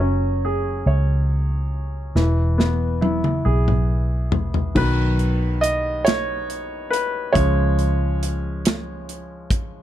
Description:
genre	six-eight pop ballad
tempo	46 BPM (dotted quarters)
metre	6/8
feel	straight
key	B major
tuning	A4 = 437 Hz
part	clear concert grand piano	accompaniment	0.0-9.8 s	D#3 to D#5	-23 LUFS	equal	none
part	vintage muted fingered electric bass	bass	0.0-9.8 s	E1 to C#2	-21 LUFS	equal	none
part	modern studio drum kit	drums	2.2-9.7 s	crash cymbal, hi-hat, kick drum, snare drum, toms	-23 LUFS	equal	none
room	little or no reverb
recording	none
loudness	-18 LUFS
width	side -12 dB against mid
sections	0.0-4.8 A section; 4.8-9.8 B section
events	drum fill 2.2-4.8; grand piano solo 4.8-9.8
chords	0.0 F#sus2; 2.2 E; 4.8 B; 7.4 C#

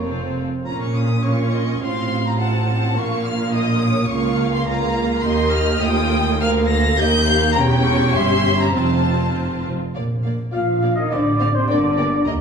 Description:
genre	quick classical-period movement for symphony orchestra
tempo	104 BPM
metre	2/4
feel	straight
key	Bb minor, Bb major from 5.2 s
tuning	A4 = 440 Hz
part	rich chamber violin section	melody	0.0-12.3 s	A4 to Bb6	-24 LUFS	left 2 dB	none
part	rich chamber violin section	second line	0.0-12.3 s	F4 to G5	-27 LUFS	left 1 dB	none
part	warm oboe	second line	0.0-0.1, 10.5-12.3 s	C5 to F5	-29 LUFS	right 2 dB	none
part	warm chamber viola section	accompaniment	0.0-12.3 s	A3 to Bb4	-23 LUFS	right 2 dB	none
part	dark chamber double bass section	bass	0.0-12.4 s	E1 to Eb2	-23 LUFS	right 1 dB	none
part	rich chamber cello section	bass	0.0-12.3 s	Db2 to F3	-22 LUFS	right 1 dB	none
part	mellow hollow concert flute	second line	10.5-12.3 s	C5 to F5	-28 LUFS	left 6 dB	none
part	dark French horn section	sustained chords	10.5-12.3 s	C4 to F4	-20 LUFS	equal	none
part	clear trumpet section	stabs	10.5-12.3 s	C5 to F5	-24 LUFS	equal	none
room	wet scoring stage reverb, RT60 1.9 s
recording	small room ambience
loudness	-16 LUFS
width	side -6 dB against mid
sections	0.7-10.0 A section; 10.0-12.4 B section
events	none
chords	0.1 F; 0.7 Bbm; 1.8 F/A; 3.0 Bb5; 4.1 Bbm/Db; 5.2 Cm7/Eb; 5.8 F7/Eb; 6.4 Bb/D; 7.0 Ebadd9; 7.6 Em6; 8.8 F; 10.0 Bb; 11.1 F/A (rootless); 11.7 Gm

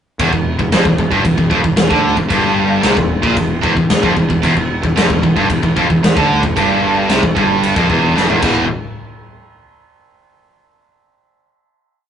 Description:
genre	heavy metal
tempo	113 BPM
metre	4/4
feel	straight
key	E phrygian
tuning	A4 = 438 Hz
part	distorted electric guitar	riff	0.2-8.6 s	E2 to E3	-17 LUFS	right 5 dB	overdrive
part	overdriven semi-hollow guitar	riff	0.2-8.7 s	E2 to E3	-20 LUFS	equal	none
part	scooped high-gain guitar	riff	0.2-8.7 s	E2 to E3	-18 LUFS	left 4 dB	distortion
part	fuzz picked electric bass	bass	0.2-8.7 s	E1 to D2	-23 LUFS	equal	overdrive
part	big rock drum kit	drums	0.2-8.6 s	crash cymbal, kick drum, snare drum, toms	-17 LUFS	equal	none
room	moderate small room ambience, RT60 0.5 s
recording	rough rehearsal-room recording, tube saturation, nothing above 11.0 kHz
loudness	-11 LUFS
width	side -8 dB against mid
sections	0.2-8.7 riff; 8.7-10.8 final hit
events	drum fill 8.2-8.7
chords	0.2 Em; 8.4 E5; 8.7 N.C.

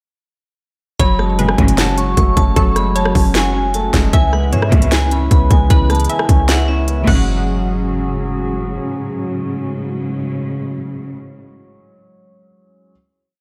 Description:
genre	hip hop, trap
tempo	153 BPM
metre	4/4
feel	half-time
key	F# minor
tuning	A4 = 437 Hz
part	vibraphone with hard mallets	melody	1.0-8.4 s	E5 to C#6	-24 LUFS	equal	low-pass filter, delay
part	hollow square pluck	second line	1.0-8.4 s	A4 to F#5	-29 LUFS	equal	chorus, delay
part	dark grand piano	accompaniment	1.0-12.9 s	E3 to F#4	-26 LUFS	equal	lush chorus, low-pass filter
part	hollow soft pad	sustained chords	1.0-11.2 s	C#3 to C#5	-28 LUFS	equal	chorus
part	clean 808-style bass	bass	1.0-8.8 s	F#1 to G#2	-19 LUFS	equal	none
part	trap drum kit	drums	1.0-7.2 s	crash cymbal, hi-hat, kick drum, rim click, snare drum	-18 LUFS	equal	none
part	warm symphonic string section	stabs	1.4-2.0, 4.5-11.2 s	G#1 to C#3	-24 LUFS	equal	delay
room	moderate lush hall reverb, RT60 1.6 s, digital ambience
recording	dreamy mix soaked in reverb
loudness	-15 LUFS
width	mono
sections	1.0-7.3 hook; 7.3-10.4 final hit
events	none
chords	1.0 F#madd9; 4.1 C#m7; 7.1 F#madd9

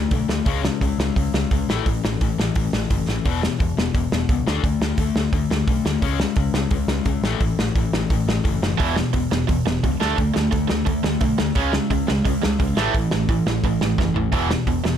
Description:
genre	punk rock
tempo	173 BPM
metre	4/4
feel	straight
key	unclear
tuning	A4 = 440 Hz
part	distorted electric guitar	riff	0.0-15.0 s	E2 to D4	-24 LUFS	left 9 dB	distortion
part	picked electric bass	bass	0.0-14.9 s	E1 to D2	-25 LUFS	right 1 dB	none
part	loose indie drum kit	drums	0.1-14.9 s	hi-hat, kick drum, snare drum, toms	-23 LUFS	right 1 dB	none
part	overdriven electric guitar	riff	8.8-15.0 s	E2 to D4	-24 LUFS	right 12 dB	none
room	light reverb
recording	none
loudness	-18 LUFS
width	side -9 dB against mid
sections	0.0-15.0 A section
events	drum fill 3.1, 14.0-14.3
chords	0.5 C#5; 1.7 A5; 3.2 E5; 4.5 D5; 6.0 C#5; 7.2 A5; 8.8 E5; 10.0 D5; 11.6 C#5; 12.8 A5; 14.3 E5

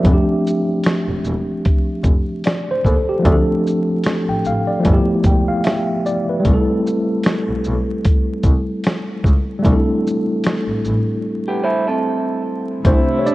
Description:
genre	lo-fi hip hop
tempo	75 BPM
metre	4/4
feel	swing 58% on 16ths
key	C major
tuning	A4 = 440 Hz
part	tine electric piano	accompaniment	0.0-13.3 s	F3 to G5	-18 LUFS	equal	overdrive, fast stereo tremolo, cassette tape, low-pass filter
part	dusty soul sampler-style drum kit	drums	0.0-13.3 s	hi-hat, kick drum, shaker, snare drum	-17 LUFS	equal	none
part	bright double bass	bass	0.1-12.9 s	E1 to Eb2	-21 LUFS	equal	none
part	electric guitar through a small old amp	second line	11.5-12.8 s	B3 to C5	-20 LUFS	right 2 dB	low-pass filter, analog delay
part	warm studio string section	sustained chords	12.9-13.3 s	C3 to E4	-22 LUFS	right 1 dB	stereo widening, low-pass filter
room	light reverb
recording	worn, warbling old tape, cassette tape, vinyl crackle, warbly pitch drift, nothing above 10.5 kHz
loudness	-15 LUFS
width	side -18 dB against mid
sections	0.0-12.8 A section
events	break 11.2-12.8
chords	0.0 F69; 3.2 Dm7; 4.8 G13; 6.4 C6

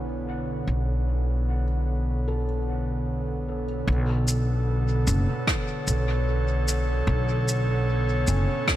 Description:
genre	ambient dub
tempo	75 BPM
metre	4/4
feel	straight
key	B minor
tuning	A4 = 436 Hz
part	airy breathy pad	sustained chords	0.0-8.8 s	B2 to C#5	-29 LUFS	right 1 dB	chorus, vintage 12-bit sampler grit
part	felt-muted upright piano	arpeggios	0.0-8.8 s	C#4 to F#5	-39 LUFS	left 4 dB	dub echo
part	upright bass	bass	0.0-8.5 s	F#1 to B1	-24 LUFS	equal	none
part	shaker and rim click	drums	4.3-8.8 s	none	-28 LUFS	equal	low-pass filter on snare, low-pass filter on perc, low-pass filter on room, dub echo
part	electronic kick drum	drums	5.5-8.8 s	none	-27 LUFS	equal	overdrive
room	small room ambience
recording	none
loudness	-23 LUFS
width	side -13 dB against mid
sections	0.0-3.9 A section; 3.9-8.8 B section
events	none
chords	0.0 Bm7

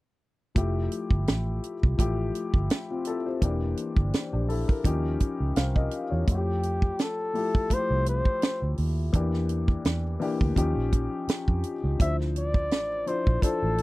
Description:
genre	lush 1970s-style soul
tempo	84 BPM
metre	4/4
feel	swing 54% on 16ths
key	F major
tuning	A4 = 440 Hz
part	dark grand piano	accompaniment	0.6-13.8 s	E3 to F5	-31 LUFS	left 4 dB	none
part	vintage muted fingered electric bass	bass	0.6-13.8 s	E1 to F2	-28 LUFS	right 1 dB	none
part	tight funk drum kit	drums	0.6-13.8 s	hi-hat, kick drum, snare drum	-24 LUFS	right 1 dB	none
part	breathy flugelhorn	melody	6.3-13.8 s	G4 to E5	-28 LUFS	left 1 dB	none
room	little or no reverb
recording	dry, close 1970s-style studio recording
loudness	-24 LUFS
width	side -19 dB against mid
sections	0.6-6.3 A section; 6.3-13.8 B section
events	none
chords	0.6 Fmaj9; 3.4 Em7b5; 4.8 Eb9; 6.3 Fmaj9; 9.1 Em7b5; 10.6 Eb9; 12.0 Dm9

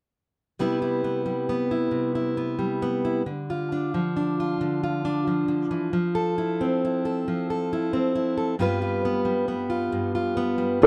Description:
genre	acoustic folk-pop ballad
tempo	45 BPM (dotted quarters)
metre	6/8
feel	straight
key	C major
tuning	A4 = 440 Hz
part	fingerpicked plugged-in steel-string acoustic guitar	accompaniment	0.6-10.9 s	G2 to B4	-26 LUFS	equal	none
part	dark upright piano	melody	10.8-10.9 s	A4	-11 LUFS	equal	none
room	moderate studio reverb, RT60 0.7 s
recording	dark, warm production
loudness	-26 LUFS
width	mono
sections	0.6-10.9 A section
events	none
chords	0.6 Cmaj7; 3.3 Dm; 5.9 Fmaj7; 8.6 G7

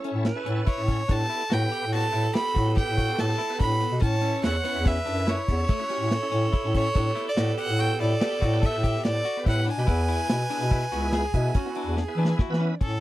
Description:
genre	progressive instrumental, band music in an uneven meter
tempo	143 BPM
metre	7/4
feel	straight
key	A mixolydian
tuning	A4 = 440 Hz
part	growling alto saxophone	second line	0.0-12.8 s	E4 to C#5	-34 LUFS	right 7 dB	none
part	bright tonewheel organ	accompaniment	0.0-12.8 s	B3 to B4	-36 LUFS	right 1 dB	chorus vibrato, slow rotary speaker
part	electric guitar at the edge of break-up	arpeggios	0.0-12.9 s	A3 to A4	-36 LUFS	left 12 dB	none
part	deep reggae drum kit	drums	0.0-12.9 s	hi-hat, kick drum, snare drum	-24 LUFS	equal	none
part	mellow bass clarinet	bass	0.1-13.0 s	C#2 to E3	-26 LUFS	equal	none
part	clear violin	melody	0.7-13.0 s	A4 to B5	-29 LUFS	equal	none
room	little or no reverb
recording	dry, close 1970s-style studio recording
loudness	-22 LUFS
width	side -16 dB against mid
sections	0.0-12.8 A section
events	drum fill 12.0-12.8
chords	0.0 A; 1.1 Gadd9/A; 4.0 A; 7.0 Gadd9/A; 9.9 E

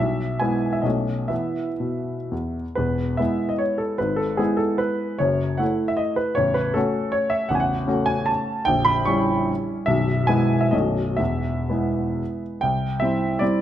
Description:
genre	classical, romantic triple-time dance for piano with dotted rhythms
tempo	115-169 BPM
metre	3/4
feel	rubato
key	E major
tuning	A4 = 440 Hz
part	warm baby grand piano	solo	0.0-13.6 s	A0 to C#6	-20 LUFS	equal	none
room	moderate recital hall reverb, RT60 1.7 s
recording	close, detailed microphones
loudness	-20 LUFS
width	side -11 dB against mid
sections	0.0-2.8 A section; 2.8-12.6 A section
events	none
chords	0.0 E/B; 0.8 B9; 1.3 E5; 2.8 E; 4.0 E/G#; 5.2 F#m7; 6.4 F#m/A; 8.7 A#dim7; 9.9 E/B; 10.7 B9; 11.2 E; 12.6 C

